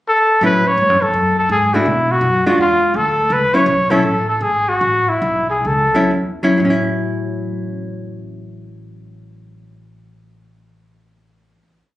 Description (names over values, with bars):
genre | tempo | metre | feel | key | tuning
jazz | 116-167 BPM | 4/4 | swing 64% on 8ths | A major | A4 = 440 Hz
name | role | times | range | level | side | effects
breathy trumpet | melody | 0.1-6.1 s | E4 to C#5 | -14 LUFS | left 1 dB | none
hollow-body jazz guitar | accompaniment | 0.4-11.7 s | F#3 to F#4 | -17 LUFS | equal | none
upright bass | bass | 0.4-11.5 s | G#1 to B2 | -23 LUFS | equal | none
room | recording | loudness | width
light reverb | recorded on a phone in the room, club reverb | -13 LUFS | side -15 dB against mid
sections
0.0-0.4 pickup bar; 0.4-6.6 A section; 6.6-10.7 final chord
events
slowing down 3.3-6.6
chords
0.4 A6; 1.1 F#madd9; 1.9 Bm; 2.6 E7b9; 3.3 A6